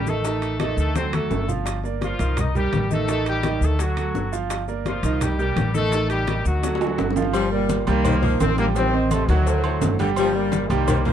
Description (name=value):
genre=latin, salsa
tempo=169 BPM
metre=4/4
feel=straight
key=G minor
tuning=A4 = 440 Hz
part: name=brilliant horn section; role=melody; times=0.0-7.1 s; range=F3 to Eb5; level=-27 LUFS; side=left 3 dB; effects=none
part: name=upright bass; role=bass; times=0.0-11.1 s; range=G1 to D2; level=-24 LUFS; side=left 1 dB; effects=none
part: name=bright concert grand piano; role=accompaniment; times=0.1-11.1 s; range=Eb3 to G5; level=-26 LUFS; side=right 9 dB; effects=none
part: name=bongos and cowbell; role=percussion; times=0.1-11.1 s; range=none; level=-33 LUFS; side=left 9 dB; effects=none
part: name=congas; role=percussion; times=0.1-11.1 s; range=none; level=-29 LUFS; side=left 2 dB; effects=none
part: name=maracas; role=percussion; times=0.1-11.1 s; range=none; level=-40 LUFS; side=left 21 dB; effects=none
part: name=timbales and agogo bells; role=percussion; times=0.2-11.1 s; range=none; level=-30 LUFS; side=right 8 dB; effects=none
part: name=warm saxophone section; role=second line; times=7.3-11.1 s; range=D3 to G3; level=-25 LUFS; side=left 8 dB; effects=none
part: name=brilliant trombone section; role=melody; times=7.4-11.1 s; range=A2 to C4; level=-25 LUFS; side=left 4 dB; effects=none
room=small room reverb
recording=dry, close 1970s-style studio recording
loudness=-19 LUFS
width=side -9 dB against mid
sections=0.0-7.3 A section; 7.3-11.1 B section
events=drum fill 1.0-1.7, 6.6-7.3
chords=0.2 Asus4; 1.0 D7; 1.7 Gm7; 2.4 Cm7; 3.1 Ebmaj7#11/A; 3.8 D; 4.5 Gm7; 5.2 Cm7; 5.9 Ebmaj7#11/A; 6.6 D; 7.3 Gm; 8.1 Cm7; 8.8 Am7b5; 9.5 D7b9; 10.2 Gm